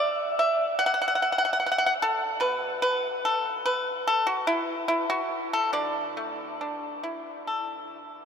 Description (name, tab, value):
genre	chinese traditional, Chinese solo plucked strings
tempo	64-75 BPM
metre	4/4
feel	rubato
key	D gong mode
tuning	A4 = 443 Hz
part	pipa	solo	0.0-8.2 s	B2 to F#5	-24 LUFS	equal	none
room	wet huge ambient reverb, RT60 8.8 s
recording	in a vast, echoing space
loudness	-24 LUFS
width	side -7 dB against mid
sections	0.0-8.2 A section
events	none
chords	none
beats	0.80 1.61 | 2.42 3.24 4.06 4.89 | 5.74 6.60 7.46